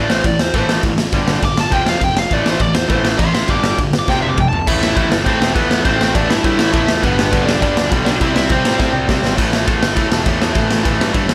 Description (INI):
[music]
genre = punk rock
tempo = 203 BPM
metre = 4/4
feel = straight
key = A minor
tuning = A4 = 438 Hz
[part]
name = high-gain lead guitar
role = melody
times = 0.0-8.9 s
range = B3 to D6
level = -21 LUFS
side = equal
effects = distortion
[part]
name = distorted electric guitar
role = riff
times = 0.0-11.3 s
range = F2 to C4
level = -21 LUFS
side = equal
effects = overdrive
[part]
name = fuzz picked electric bass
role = bass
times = 0.0-11.3 s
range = E1 to A2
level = -24 LUFS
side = equal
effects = overdrive
[part]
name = raw garage drum kit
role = drums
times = 0.1-11.3 s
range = crash cymbal, kick drum, snare drum, splash cymbal, toms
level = -20 LUFS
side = equal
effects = none
[sound]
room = little or no reverb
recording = none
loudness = -15 LUFS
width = mono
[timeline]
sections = 0.0-4.7 A section; 4.7-11.3 B section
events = lead electric guitar solo 0.0-4.7; drum fill 4.1-4.7, 8.8-9.4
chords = 0.0 A5; 1.1 G5; 1.7 F5; 2.3 A5; 3.5 G5; 4.1 F5; 4.7 Am; 7.0 G; 8.2 C; 9.4 A5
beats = 0.24 0.53 0.83 | 1.12 1.42 1.71 2.01 | 2.30 2.60 2.90 3.19 | 3.49 3.78 4.08 4.37 | 4.67 4.96 5.26 5.55 | 5.85 6.14 6.44 6.73 | 7.03 7.32 7.62 7.91 | 8.21 8.50 8.79 9.09 | 9.38 9.68 9.97 10.27 | 10.56 10.85 11.15